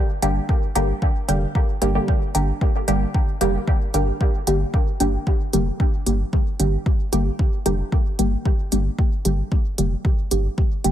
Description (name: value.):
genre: dub techno.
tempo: 113 BPM.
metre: 4/4.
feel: straight.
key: G minor.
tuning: A4 = 439 Hz.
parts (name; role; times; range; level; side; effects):
filtered dub chord stab; stabs; 0.2-10.9 s; D3 to G4; -23 LUFS; equal; chorus, phaser, sidechain pumping, dub echo.
warm sub bass; bass; 0.2-10.9 s; F1 to G1; -22 LUFS; equal; sidechain pumping.
electronic hi-hat; drums; 0.2-10.9 s; none; -27 LUFS; right 1 dB; none.
electronic kick drum; drums; 0.5-10.7 s; none; -20 LUFS; equal; overdrive.
room: little or no reverb.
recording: none.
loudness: -18 LUFS.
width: side -11 dB against mid.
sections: 0.0-10.9 A section.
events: none.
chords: 0.0 Gm.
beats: | 0.49 1.02 1.55 2.08 | 2.61 3.15 3.67 4.21 | 4.74 5.27 5.80 6.33 | 6.86 7.39 7.92 8.45 | 8.98 9.52 10.05 10.58.